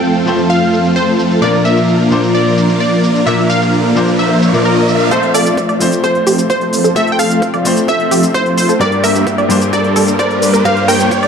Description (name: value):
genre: EDM, festival progressive house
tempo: 130 BPM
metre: 4/4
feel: straight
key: F major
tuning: A4 = 439 Hz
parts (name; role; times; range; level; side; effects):
- plucky unison lead; melody; 0.0-11.3 s; Bb4 to G5; -16 LUFS; equal; vintage 12-bit sampler grit, dub echo
- clear baby grand piano; accompaniment; 0.0-11.3 s; G2 to C5; -18 LUFS; left 4 dB; sidechain pumping
- lush unison pad; sustained chords; 0.0-11.3 s; F2 to D6; -23 LUFS; right 1 dB; none
- big supersaw lead; riff; 0.0-11.3 s; F3 to D5; -14 LUFS; equal; sidechain pumping, low-pass filter
- electronic shaker and hi-hat; drums; 0.0-11.3 s; none; -23 LUFS; equal; low-pass filter on perc, low-pass filter on hats, low-pass filter on room
- riser; sound effects; 2.7-11.3 s; none; -22 LUFS; right 3 dB; none
- wide unison pluck; arpeggios; 5.1-11.3 s; G4 to D5; -19 LUFS; right 2 dB; sidechain pumping, dub echo
- wide detuned saw bass; bass; 5.1-11.3 s; F1 to G1; -28 LUFS; equal; none
- electronic kick drum; drums; 5.1-11.2 s; none; -25 LUFS; right 1 dB; none
room: light reverb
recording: dark, warm production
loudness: -10 LUFS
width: side -6 dB against mid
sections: 0.0-5.1 A section; 5.1-11.3 B section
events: riser 2.7-5.1, 5.1-11.3; build-up 5.1-11.3; filter sweep on supersaw synth 5.1-11.3; filter sweep on synth pluck 5.1-11.3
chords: 0.0 F; 1.4 Bb; 5.1 F; 8.8 Gm